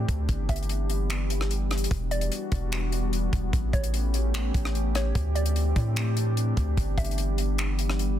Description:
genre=hip hop, atmospheric cloud-rap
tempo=148 BPM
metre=4/4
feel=half-time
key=E minor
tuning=A4 = 441 Hz
part: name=warbly tape-like pad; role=sustained chords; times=0.0-8.2 s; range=E3 to G4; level=-32 LUFS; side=equal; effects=chorus, built-in reverb, sidechain pumping
part: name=long sustained 808-style bass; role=bass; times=0.0-8.2 s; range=E1 to A2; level=-26 LUFS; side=equal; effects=none
part: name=tight funk drum kit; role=drums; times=0.1-8.1 s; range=finger snaps, hi-hat, kick drum, rim click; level=-30 LUFS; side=equal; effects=none
part: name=hollow square pluck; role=melody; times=0.5-7.2 s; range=C#5 to E5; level=-38 LUFS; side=equal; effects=chorus, low-pass filter, ping-pong delay
room=small room ambience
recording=dense, heavily limited modern master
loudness=-24 LUFS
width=side -11 dB against mid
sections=0.0-1.9 A section; 1.9-8.2 B section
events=none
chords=0.3 G6; 1.9 Em9; 3.5 A9; 5.2 D9sus4; 6.8 G6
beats=| 0.29 0.69 1.10 1.50 | 1.91 2.31 2.72 3.13 | 3.53 3.94 4.34 4.75 | 5.15 5.56 5.96 6.37 | 6.77 7.18 7.58 7.99

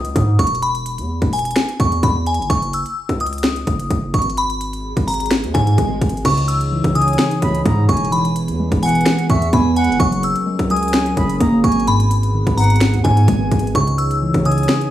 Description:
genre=hip hop, trap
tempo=128 BPM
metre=4/4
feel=half-time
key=unclear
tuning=A4 = 440 Hz
part: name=glassy synth bell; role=melody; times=0.0-14.9 s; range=G#5 to E6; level=-21 LUFS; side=left 2 dB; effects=chorus
part: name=distorted 808-style bass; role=bass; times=0.0-14.7 s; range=E1 to G#2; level=-21 LUFS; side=equal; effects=distortion
part: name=trap drum kit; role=drums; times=0.0-14.9 s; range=crash cymbal, finger snaps, hi-hat, kick drum, snare drum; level=-20 LUFS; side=equal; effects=none
part: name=swell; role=sound effects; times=4.8-6.2 s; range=none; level=-28 LUFS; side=right 3 dB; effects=none
part: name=dark analog pad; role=sustained chords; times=6.2-14.9 s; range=D#3 to C#5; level=-24 LUFS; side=right 2 dB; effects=chorus
part: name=muted felt-like synth keys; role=accompaniment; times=6.3-14.9 s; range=G#2 to B3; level=-18 LUFS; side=equal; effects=chorus
part: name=bright reedy concert flute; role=second line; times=7.0-14.9 s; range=E5 to B5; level=-26 LUFS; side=right 2 dB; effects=digital delay
room=light reverb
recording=studio reverb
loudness=-14 LUFS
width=side -12 dB against mid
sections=0.0-6.2 A section; 6.2-14.9 B section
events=swell 4.8-6.2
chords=0.0 C#madd9; 0.6 E; 2.5 F#sus2; 4.4 G#m; 6.2 C#madd9; 8.1 E; 10.0 F#add9; 11.9 G#m; 13.8 C#madd9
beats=0.16 | 0.62 1.09 1.56 2.03 | 2.50 2.97 3.44 3.91 | 4.38 4.84 5.31 5.78 | 6.25 6.72 7.19 7.66 | 8.12 8.59 9.06 9.53 | 10.00 10.47 10.94 11.41 | 11.88 12.34 12.81 13.28 | 13.75 14.22 14.69

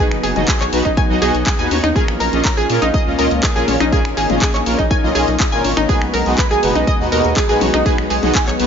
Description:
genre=progressive house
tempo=122 BPM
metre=4/4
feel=straight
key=unclear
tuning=A4 = 440 Hz
part: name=lush unison pad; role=sustained chords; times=0.0-8.7 s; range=F#3 to F#4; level=-23 LUFS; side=left 1 dB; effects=chorus, sidechain pumping
part: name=analog pluck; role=arpeggios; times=0.0-8.5 s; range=D#4 to G#5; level=-19 LUFS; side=right 1 dB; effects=lush chorus, cassette tape, sidechain pumping, ping-pong delay
part: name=soft supersaw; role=stabs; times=0.0-8.7 s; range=A#2 to D#5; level=-20 LUFS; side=equal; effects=phaser, sidechain pumping, ping-pong delay
part: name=round analog bass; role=bass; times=0.0-8.7 s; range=F#1 to A#2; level=-22 LUFS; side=equal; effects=sidechain pumping
part: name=house drum kit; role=drums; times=0.1-8.7 s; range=finger snaps, handclaps, hi-hat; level=-23 LUFS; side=equal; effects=studio reverb
part: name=electronic toms and congas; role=percussion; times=0.4-8.3 s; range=none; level=-25 LUFS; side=left 7 dB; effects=sidechain pumping on perc, studio reverb, sidechain pumping on toms
part: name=electronic kick drum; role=drums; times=0.5-8.4 s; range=none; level=-18 LUFS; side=equal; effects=studio reverb
room=light reverb, digital ambience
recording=nothing above 7.5 kHz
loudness=-13 LUFS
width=side -7 dB against mid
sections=0.0-8.7 A section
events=none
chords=0.0 B; 2.0 A#m; 5.9 G#m7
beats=0.48 0.97 1.46 | 1.96 2.45 2.94 3.43 | 3.92 4.42 4.91 5.40 | 5.89 6.38 6.87 7.37 | 7.86 8.35

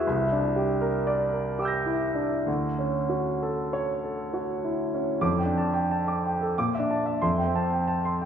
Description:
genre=classical, impressionist solo piano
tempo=63-93 BPM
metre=3/4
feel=rubato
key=D major, F major from 5.2 s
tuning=A4 = 440 Hz
part: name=clear concert grand piano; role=solo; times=0.0-8.3 s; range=C2 to Bb6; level=-24 LUFS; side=equal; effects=none
room=wet scoring stage reverb, RT60 1.7 s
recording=heard from further back in the room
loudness=-24 LUFS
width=side -8 dB against mid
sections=0.0-5.2 A section; 5.2-8.3 B section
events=none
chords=0.1 C9; 2.5 Dmaj9; 5.2 F69; 6.6 Bbmaj7#11; 7.2 Fadd9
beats=| 0.07 0.81 1.60 | 2.47 3.42 4.35 | 5.22 5.91 6.57 | 7.24 7.89

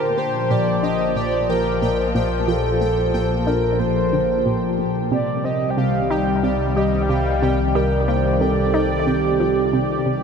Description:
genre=ambient, sequencer-driven space music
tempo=91 BPM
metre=4/4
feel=straight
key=unclear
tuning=A4 = 440 Hz
part: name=mellow horn-like synth lead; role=melody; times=0.0-10.0 s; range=G4 to G5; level=-22 LUFS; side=right 1 dB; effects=chorus, ping-pong delay
part: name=sweeping resonant pad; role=sustained chords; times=0.0-10.2 s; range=Bb2 to A5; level=-22 LUFS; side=left 1 dB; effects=chorus
part: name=analog pluck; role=riff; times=0.0-10.2 s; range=Bb2 to Eb4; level=-25 LUFS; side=equal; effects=chorus, ping-pong delay
part: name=analog drone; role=bass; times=0.7-10.2 s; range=Bb1 to C2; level=-26 LUFS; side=equal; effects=chorus
part: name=pulsing gated texture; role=texture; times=0.0-10.2 s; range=G4 to G5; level=-30 LUFS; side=right 1 dB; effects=chorus, built-in reverb
room=wet huge ambient reverb, RT60 7.9 s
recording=dreamy mix soaked in reverb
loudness=-17 LUFS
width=side -6 dB against mid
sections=0.0-10.2 A section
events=fade-in on synth drone 0.0-10.2; filter sweep on synth arpeggio sound 0.0-10.2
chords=0.0 Bbmaj7; 5.1 Cm7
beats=0.50 1.16 1.82 | 2.48 3.14 3.80 4.46 | 5.12 5.78 6.43 7.09 | 7.75 8.41 9.07 9.73

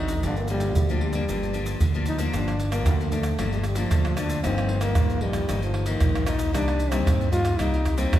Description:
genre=samba and choro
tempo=114 BPM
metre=4/4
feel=straight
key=G minor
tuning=A4 = 445 Hz
part: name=growling trombone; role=melody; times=0.0-8.2 s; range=Eb3 to F4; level=-29 LUFS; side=equal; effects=none
part: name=nylon-string guitar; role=accompaniment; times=0.0-8.2 s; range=G2 to F#4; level=-29 LUFS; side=left 3 dB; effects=none
part: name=fingered electric bass with an envelope filter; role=bass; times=0.0-8.2 s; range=G1 to G2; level=-27 LUFS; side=equal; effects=none
part: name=tube shaker, pandeiro, surdo and tamborim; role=percussion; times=0.1-8.2 s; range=none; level=-25 LUFS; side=right 1 dB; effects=none
room=wet scoring stage reverb, RT60 1.5 s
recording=recorded in a church or concert hall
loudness=-22 LUFS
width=side -12 dB against mid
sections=0.0-2.3 A section; 2.3-8.2 A section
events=none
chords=0.2 Gm7; 4.4 Ebadd9/G; 6.5 Cm7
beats=| 0.23 0.76 1.28 1.81 | 2.33 2.86 3.39 3.91 | 4.44 4.97 5.49 6.02 | 6.55 7.07 7.60 8.13

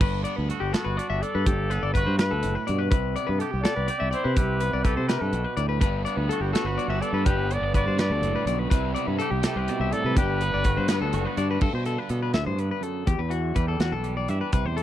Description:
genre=math rock and midwest emo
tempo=83 BPM (dotted quarters)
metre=6/8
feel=straight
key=G major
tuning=A4 = 436 Hz
part: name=twangy electric guitar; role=accompaniment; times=0.0-14.8 s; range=E2 to G4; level=-33 LUFS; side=right 9 dB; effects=spring reverb
part: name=clean electric guitar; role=arpeggios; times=0.0-14.8 s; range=F#4 to E5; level=-30 LUFS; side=left 10 dB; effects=none
part: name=growling fingered electric bass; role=bass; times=0.0-14.8 s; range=F#1 to C3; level=-27 LUFS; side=equal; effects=overdrive
part: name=modern studio drum kit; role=drums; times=0.0-14.8 s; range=crash cymbal, hi-hat, kick drum, snare drum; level=-25 LUFS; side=equal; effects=none
part: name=breathy trumpet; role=melody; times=0.7-11.1 s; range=F#4 to D5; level=-30 LUFS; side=equal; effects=none
part: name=crunchy overdriven guitar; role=riff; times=5.8-11.6 s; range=G2 to E4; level=-32 LUFS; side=right 2 dB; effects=none
room=little or no reverb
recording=dry, close 1970s-style studio recording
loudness=-22 LUFS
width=side -12 dB against mid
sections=0.0-11.6 A section; 11.6-14.8 B section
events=none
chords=0.0 Gmaj9; 2.9 Cmaj7(no3); 5.8 Gmaj9; 8.7 Cmaj7; 10.2 Gmaj7; 11.6 Gadd9; 13.1 Em9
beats=| 0.01 0.74 | 1.46 2.19 | 2.92 3.64 | 4.37 5.09 | 5.82 6.54 | 7.27 7.99 | 8.72 9.44 | 10.17 10.89 | 11.62 12.35 | 13.07 13.80 | 14.53

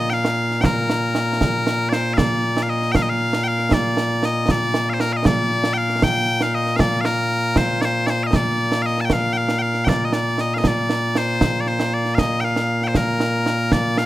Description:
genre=scottish traditional, Scottish pipe music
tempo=78 BPM (dotted quarters)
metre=6/8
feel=straight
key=Bb major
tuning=A4 = 440 Hz
part: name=loud bright bagpipes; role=melody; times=0.0-14.1 s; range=Bb2 to A5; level=-19 LUFS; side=left 1 dB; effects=none
part: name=concert snare drum and concert bass drum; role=drums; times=0.1-14.1 s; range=none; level=-22 LUFS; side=right 2 dB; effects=none
room=light reverb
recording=close, detailed microphones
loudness=-17 LUFS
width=side -15 dB against mid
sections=0.0-2.2 A section; 2.2-14.1 A section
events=none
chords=none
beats=| 0.64 1.41 | 2.18 2.95 | 3.72 4.49 | 5.25 6.02 | 6.79 7.56 | 8.33 9.10 | 9.87 10.64 | 11.41 12.18 | 12.95 13.72

